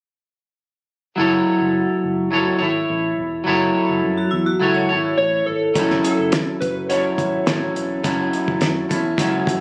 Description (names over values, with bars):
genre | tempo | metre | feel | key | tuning
indie pop, bedroom pop | 105 BPM | 4/4 | straight | unclear | A4 = 441 Hz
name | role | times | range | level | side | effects
electric guitar at the edge of break-up | accompaniment | 1.2-9.6 s | F#3 to C#5 | -21 LUFS | equal | lush chorus, warbly pitch drift
vintage muted fingered electric bass | bass | 1.2-9.6 s | E1 to F#2 | -32 LUFS | equal | none
vibraphone with medium hard mallets | second line | 4.2-5.6 s | E4 to C#5 | -27 LUFS | equal | analog chorus, digital delay
electric slide guitar | melody | 5.2-7.7 s | A4 to C#5 | -25 LUFS | equal | analog chorus, digital delay
cloth-damped thuddy drum kit | drums | 5.8-9.6 s | hi-hat, kick drum, snare drum | -25 LUFS | equal | none
room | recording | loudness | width
light reverb | recorded on a phone in the room, studio reverb | -20 LUFS | mono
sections
1.2-5.8 A section; 5.8-9.6 B section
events
none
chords
1.2 F#m7